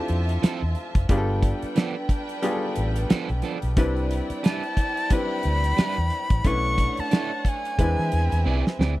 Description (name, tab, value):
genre	lush 1970s-style soul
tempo	90 BPM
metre	4/4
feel	swing 58% on 16ths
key	unclear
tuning	A4 = 435 Hz
part	rich studio violin section	second line	0.0-9.0 s	C4 to A5	-34 LUFS	right 1 dB	none
part	clear baby grand piano	accompaniment	0.0-9.0 s	F3 to B4	-29 LUFS	left 1 dB	none
part	vintage muted fingered electric bass	bass	0.1-8.9 s	F1 to E3	-24 LUFS	equal	none
part	damped 70s drum kit	drums	0.1-9.0 s	hi-hat, kick drum, snare drum	-21 LUFS	equal	none
part	electric guitar at the edge of break-up	riff	0.4-8.9 s	F3 to D5	-29 LUFS	right 6 dB	none
part	breathy bright jazz flute	melody	4.5-8.8 s	G#5 to C#6	-27 LUFS	equal	none
room	little or no reverb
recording	dry, close 1970s-style studio recording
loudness	-21 LUFS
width	side -17 dB against mid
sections	0.0-9.0 A section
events	drum fill 8.5-9.0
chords	0.0 Dm9; 1.1 G9; 3.8 Cmaj9; 6.4 Bm11; 7.8 E7b13